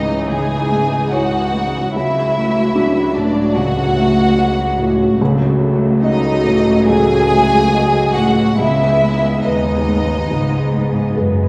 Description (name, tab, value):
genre	cinematic, emotional film score for orchestra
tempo	72 BPM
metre	4/4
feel	rubato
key	unclear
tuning	A4 = 440 Hz
part	rich studio violin section	melody	0.0-11.1 s	D5 to G#5	-24 LUFS	equal	none
part	rich studio violin section	second line	0.0-11.2 s	D4 to G#4	-22 LUFS	equal	none
part	felt-muted upright piano	accompaniment	0.0-11.5 s	C#2 to F#5	-21 LUFS	equal	none
part	rich studio viola section	accompaniment	0.0-11.5 s	E3 to F#4	-23 LUFS	equal	none
part	concert harp	arpeggios	0.0-11.5 s	C#3 to D6	-25 LUFS	equal	none
part	warm studio cello section	bass	0.0-11.5 s	C#2 to G#2	-23 LUFS	equal	none
room	wet recital hall reverb, RT60 1.4 s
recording	recorded in a church or concert hall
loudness	-15 LUFS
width	mono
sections	0.0-11.5 A section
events	none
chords	0.0 C#madd9; 1.9 D/C#; 5.2 D#dim/C#; 8.6 G#m/C#